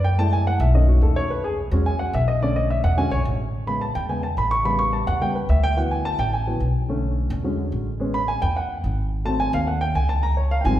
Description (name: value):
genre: Afro-Cuban jazz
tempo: 215 BPM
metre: 4/4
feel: straight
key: E major, A major from 3.5 s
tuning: A4 = 438 Hz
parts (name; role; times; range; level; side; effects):
- dark baby grand piano; accompaniment; 0.0-10.8 s; C#3 to C#6; -23 LUFS; equal; none
- upright bass; bass; 0.0-10.8 s; G#1 to F#2; -21 LUFS; equal; none
room: wet recital hall reverb, RT60 1.8 s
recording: recorded in a church or concert hall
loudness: -19 LUFS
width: side -13 dB against mid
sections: 0.0-3.5 A section; 3.5-10.8 A section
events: grand piano solo 0.0-10.8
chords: 0.2 F#m7; 0.7 B9; 1.3 E6; 2.4 Bm7; 3.0 E13; 3.5 Amaj9; 4.7 A9; 5.8 D69; 6.9 Bm9; 7.4 E13; 8.0 Amaj7; 9.1 G#7b9; 10.2 C#maj9#11